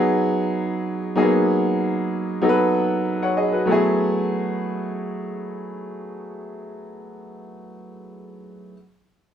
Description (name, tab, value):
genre	soul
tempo	95 BPM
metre	4/4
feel	straight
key	F# dorian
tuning	A4 = 440 Hz
part	clear baby grand piano	solo	0.0-8.7 s	F#3 to F#5	-21 LUFS	equal	none
room	moderate large studio reverb, RT60 0.9 s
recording	band playing live in one room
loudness	-19 LUFS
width	side -9 dB against mid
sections	0.0-3.7 A section; 3.7-6.2 B section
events	none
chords	0.0 G#m7; 3.7 F#m11